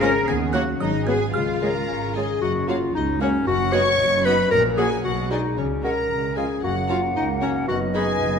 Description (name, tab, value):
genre	cinematic, playful, whimsical film cue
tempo	114 BPM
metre	2/4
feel	straight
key	F# major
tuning	A4 = 439 Hz
part	music box	melody	0.0-2.1 s	D#6 to A#6	-32 LUFS	right 4 dB	none
part	rich studio violin section	melody	0.0-8.4 s	B4 to C#6	-29 LUFS	left 4 dB	none
part	rich studio violin section	second line	0.0-8.0 s	C#5 to B5	-38 LUFS	left 2 dB	none
part	silver concert flute	second line	0.0-8.4 s	B4 to F#5	-32 LUFS	left 1 dB	none
part	warm clarinet	second line	0.0-8.4 s	F#3 to C#5	-23 LUFS	left 1 dB	none
part	mellow bassoon	accompaniment	0.0-8.4 s	E#3 to B3	-32 LUFS	right 2 dB	none
part	rich studio viola section	accompaniment	0.0-8.0 s	F#3 to G#4	-33 LUFS	right 3 dB	none
part	warm French horn section	sustained chords	0.0-8.4 s	E#3 to A#4	-33 LUFS	left 5 dB	none
part	concert harp	arpeggios	0.0-8.4 s	F#2 to G#5	-28 LUFS	left 6 dB	none
part	rich studio double bass section	bass	0.0-8.4 s	F#1 to D#2	-29 LUFS	right 5 dB	none
part	warm studio cello section	bass	0.0-8.4 s	C#2 to A#4	-30 LUFS	right 4 dB	none
room	moderate scoring stage reverb, RT60 1.9 s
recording	none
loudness	-19 LUFS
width	side -6 dB against mid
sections	0.0-2.4 A section; 2.4-8.4 B section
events	none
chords	0.3 D#m7; 0.8 G#m7; 1.3 C#; 2.4 F#; 3.5 B/F#; 4.5 F#/A#; 5.0 G#m7b5/B; 5.6 C#sus4; 6.1 C#; 6.6 F#; 7.7 B/F#